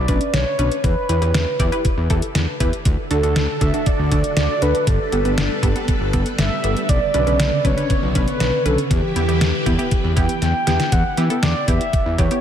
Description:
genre	synth-pop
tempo	119 BPM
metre	4/4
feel	straight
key	unclear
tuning	A4 = 440 Hz
part	mellow horn-like synth lead	melody	0.0-12.4 s	G4 to G5	-23 LUFS	right 1 dB	chorus, analog delay
part	fat analog bass	bass	0.0-12.3 s	G1 to E3	-20 LUFS	equal	none
part	funky polysynth comp	accompaniment	0.1-12.4 s	B3 to D5	-25 LUFS	equal	chorus
part	detuned 8-bit digital drum machine	drums	0.1-12.4 s	hi-hat, kick drum, snare drum	-21 LUFS	equal	overdrive
part	string machine, full ensemble	sustained chords	2.9-10.9 s	C#3 to B4	-26 LUFS	right 1 dB	phaser, ensemble chorus
room	moderate cathedral reverb, RT60 5.2 s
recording	dreamy mix soaked in reverb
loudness	-16 LUFS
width	side -9 dB against mid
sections	0.0-10.9 A section; 10.9-12.4 B section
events	drum fill 10.4-10.9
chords	0.0 Bmadd9; 0.8 Em; 2.9 D; 4.9 Gadd9; 6.9 Bmadd9; 8.9 Em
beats	0.34 | 0.84 1.34 1.85 2.35 | 2.86 3.36 3.87 4.37 | 4.87 5.38 5.88 6.39 | 6.89 7.39 7.90 8.40 | 8.91 9.41 9.91 10.42 | 10.92 11.43 11.93

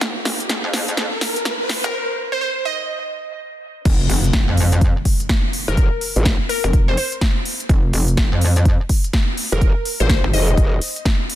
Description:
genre	bass house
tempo	125 BPM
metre	4/4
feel	swing 62% on 16ths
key	F minor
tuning	A4 = 440 Hz
part	metallic wobble bass	bass	0.0-10.3 s	F1 to F2	-19 LUFS	equal	chorus, tube saturation, sidechain pumping, high-pass filter
part	big-room dance drum kit	drums	0.0-11.4 s	crash cymbal, hi-hat, snare drum	-23 LUFS	equal	none
part	riser and impact	sound effects	0.0-5.8 s	none	-26 LUFS	equal	none
part	glassy wavetable pluck	melody	1.8-11.0 s	Bb4 to Eb5	-24 LUFS	left 1 dB	chorus, dub echo
part	electronic kick drum	drums	3.9-11.2 s	none	-16 LUFS	equal	none
part	growl bass	bass	5.7-6.4, 9.5-10.8 s	F1 to Ab1	-18 LUFS	equal	chorus, sidechain pumping
room	little or no reverb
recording	dense, heavily limited modern master, high-pass filter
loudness	-16 LUFS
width	side -13 dB against mid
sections	0.0-3.9 A section; 3.9-11.4 B section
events	build-up 0.0-3.9; drum fill 0.0-1.9; riser 0.0-1.9; filter sweep 0.0-3.9; break 1.9-3.9; drop 3.9-11.4; impact 3.9-5.8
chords	none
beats	| 0.01 0.49 0.97 1.45 | 1.93 2.41 2.89 3.37 | 3.85 4.33 4.81 5.29 | 5.77 6.25 6.73 7.21 | 7.69 8.17 8.65 9.13 | 9.61 10.09 10.57 11.05

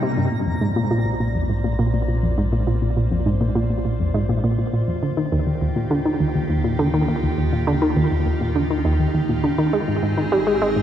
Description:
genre	ambient, sequencer-driven space music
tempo	102 BPM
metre	4/4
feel	straight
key	unclear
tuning	A4 = 439 Hz
part	evolving wavetable pad	sustained chords	0.0-10.8 s	C3 to D5	-27 LUFS	equal	chorus, built-in reverb
part	analog pluck	riff	0.0-10.8 s	Eb2 to Ab3	-19 LUFS	equal	chorus, analog delay
part	analog drone	bass	1.0-10.8 s	Ab1 to Eb2	-26 LUFS	equal	chorus
room	wet cathedral reverb, RT60 5.3 s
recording	in a vast, echoing space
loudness	-18 LUFS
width	side -10 dB against mid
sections	0.3-10.8 A section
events	fade-in on ambient pad 0.3-10.8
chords	0.3 Bbadd9; 5.0 Ebadd9; 9.7 Ab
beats	| 0.32 0.91 1.50 2.08 | 2.67 3.26 3.85 4.44 | 5.03 5.61 6.20 6.79 | 7.38 7.97 8.55 9.14 | 9.73 10.32

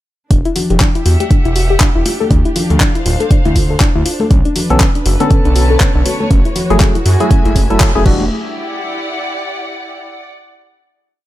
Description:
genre	deep house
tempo	120 BPM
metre	4/4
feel	swing 59% on 16ths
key	E dorian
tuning	A4 = 442 Hz
part	soft round pluck	arpeggios	0.3-8.3 s	C#4 to C#5	-19 LUFS	left 4 dB	chorus, sidechain pumping, digital delay
part	smooth synth bass	bass	0.3-8.3 s	D1 to F#2	-14 LUFS	equal	sidechain pumping
part	deep house drum kit	drums	0.3-8.2 s	crash cymbal, handclaps, hi-hat	-20 LUFS	left 1 dB	none
part	electronic kick drum	drums	0.3-8.2 s	none	-12 LUFS	equal	none
part	muted studio string section	texture	0.3-10.3 s	A3 to A5	-24 LUFS	equal	sidechain pumping
part	congas	percussion	0.6-8.3 s	none	-21 LUFS	left 1 dB	none
part	percussive organ stab	stabs	4.7-8.3 s	D3 to A4	-17 LUFS	equal	chorus, sidechain pumping, digital delay
room	little or no reverb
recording	none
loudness	-10 LUFS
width	side -15 dB against mid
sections	0.3-8.3 groove; 8.3-10.3 final chord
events	band accent 7.8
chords	0.3 Em9; 2.1 Dm9; 4.3 Bm9; 6.3 F#m9; 8.1 Em9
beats	| 0.31 0.81 1.31 1.81 | 2.31 2.81 3.31 3.81 | 4.31 4.81 5.31 5.81 | 6.31 6.81 7.31 7.81 | 8.31 8.81 9.31 9.81

